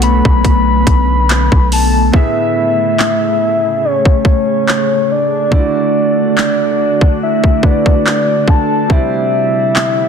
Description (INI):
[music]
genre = contemporary R&B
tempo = 71 BPM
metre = 4/4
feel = swing 54% on 16ths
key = A major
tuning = A4 = 438 Hz
[part]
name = soft octave-layered synth lead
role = melody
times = 0.0-10.1 s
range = C#5 to B5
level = -15 LUFS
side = left 2 dB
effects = chorus
[part]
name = clear concert grand piano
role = accompaniment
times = 0.0-10.1 s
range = A2 to E5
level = -20 LUFS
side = right 6 dB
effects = none
[part]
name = glassy FM pad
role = sustained chords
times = 0.0-10.1 s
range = C3 to G#4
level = -17 LUFS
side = left 1 dB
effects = ensemble chorus, built-in reverb
[part]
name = warm 808-style bass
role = bass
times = 0.0-2.1 s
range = B1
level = -14 LUFS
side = equal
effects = none
[part]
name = trap drum kit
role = drums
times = 0.0-10.0 s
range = handclaps, hi-hat, kick drum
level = -13 LUFS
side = equal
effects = none
[sound]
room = little or no reverb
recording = dense, heavily limited modern master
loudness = -10 LUFS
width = side -7 dB against mid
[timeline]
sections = 0.0-2.1 A section; 2.1-10.1 B section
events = none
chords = 0.0 Bm7; 2.1 Amaj7; 5.5 D; 8.9 C